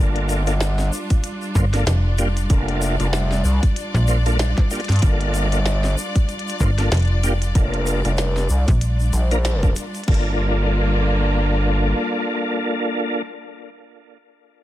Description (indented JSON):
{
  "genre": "glitch hop",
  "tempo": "95 BPM",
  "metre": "4/4",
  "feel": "swing 58% on 16ths",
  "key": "G minor",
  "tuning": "A4 = 442 Hz",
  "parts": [
    { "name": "clear studio string section", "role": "sustained chords", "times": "0.0-13.2 s", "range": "G3 to D5", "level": "-28 LUFS", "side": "equal", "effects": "sidechain pumping" },
    { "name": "tonewheel organ", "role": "stabs", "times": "0.0-13.2 s", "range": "Bb3 to C5", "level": "-25 LUFS", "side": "equal", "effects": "chorus vibrato, fast rotary speaker, sidechain pumping, ping-pong delay" },
    { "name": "gritty driven synth bass", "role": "bass", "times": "0.0-11.9 s", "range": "F1 to G2", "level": "-20 LUFS", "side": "equal", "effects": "none" },
    { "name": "glitchy drum kit", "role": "drums", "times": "0.2-10.2 s", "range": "crash cymbal, hi-hat, snare drum", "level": "-28 LUFS", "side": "equal", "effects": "studio reverb" },
    { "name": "egg shaker", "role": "percussion", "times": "0.3-10.1 s", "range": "none", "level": "-36 LUFS", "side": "left 3 dB", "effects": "none" },
    { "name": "electronic kick drum", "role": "drums", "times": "1.1-10.2 s", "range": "none", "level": "-17 LUFS", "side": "equal", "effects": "studio reverb" },
    { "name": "slap-like FM bass", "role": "bass", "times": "1.6-9.1 s", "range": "F1 to Bb1", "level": "-18 LUFS", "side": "equal", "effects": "none" }
  ],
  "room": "little or no reverb",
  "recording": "none",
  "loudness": "-17 LUFS",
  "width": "side -14 dB against mid",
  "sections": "0.0-10.1 A section; 10.1-12.6 B section",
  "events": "drop 0.0-10.1; band accent 9.4-9.8",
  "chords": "0.0 Gm7"
}